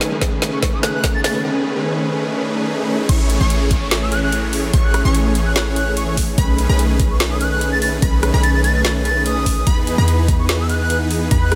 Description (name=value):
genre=future bass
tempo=146 BPM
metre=4/4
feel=swing 53% on 16ths, half-time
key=A lydian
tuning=A4 = 440 Hz
part: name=felt-muted upright piano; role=accompaniment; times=0.0-3.1 s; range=A3 to B4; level=-34 LUFS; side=equal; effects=none
part: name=ethereal airy pad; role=sustained chords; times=0.5-1.4 s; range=C#3 to G#4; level=-40 LUFS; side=equal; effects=none
part: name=supersaw chords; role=riff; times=0.0-11.6 s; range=D#3 to C#5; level=-23 LUFS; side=equal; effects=sidechain pumping, low-pass filter
part: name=warm 808-style bass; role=bass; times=0.0-11.6 s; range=A1 to E2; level=-21 LUFS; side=equal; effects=sidechain pumping, high-pass filter
part: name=trap drum kit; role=drums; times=0.0-11.6 s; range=crash cymbal, hi-hat, rim click, snare drum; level=-24 LUFS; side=equal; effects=none
part: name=riser and downlifter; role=sound effects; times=0.1-6.4 s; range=none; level=-32 LUFS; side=equal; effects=none
part: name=electronic kick drum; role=drums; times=0.2-11.4 s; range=none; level=-21 LUFS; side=equal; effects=none
part: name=bright reedy silver concert flute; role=melody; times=0.5-1.3, 3.8-11.6 s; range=C#6 to A6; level=-26 LUFS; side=equal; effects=sidechain pumping, delay
part: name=unison pluck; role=arpeggios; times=3.1-11.6 s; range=B5 to C#6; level=-30 LUFS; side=equal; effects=phaser, sidechain pumping, delay
room=light reverb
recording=none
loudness=-17 LUFS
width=mono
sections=0.0-3.1 A section; 3.1-11.6 B section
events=build-up 0.0-3.1; drum fill 0.0-1.4; drop 3.1-11.6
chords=0.0 B13; 3.1 Amaj7; 6.4 B13; 9.7 Emaj7